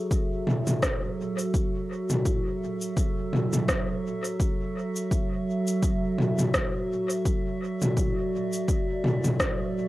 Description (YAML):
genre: ambient dub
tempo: 84 BPM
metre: 4/4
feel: swing 56% on 16ths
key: F# minor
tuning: A4 = 442 Hz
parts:
  - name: warbly tape-like pad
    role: sustained chords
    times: 0.0-9.9 s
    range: F#3 to E5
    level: -29 LUFS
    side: right 1 dB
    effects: chorus, built-in reverb, cassette tape
  - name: electronic kick drum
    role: drums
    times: 0.1-9.6 s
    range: none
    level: -28 LUFS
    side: equal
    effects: overdrive, cassette tape
  - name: organic electronic drum kit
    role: drums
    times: 0.1-9.6 s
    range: cabasa, rim click, toms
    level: -27 LUFS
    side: equal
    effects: cassette tape, dub echo
room: wet booth ambience, RT60 0.2 s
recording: home recording on cassette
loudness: -24 LUFS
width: side -16 dB against mid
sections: 0.0-9.9 A section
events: none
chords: 0.0 F#m9; 5.1 Dadd9/F#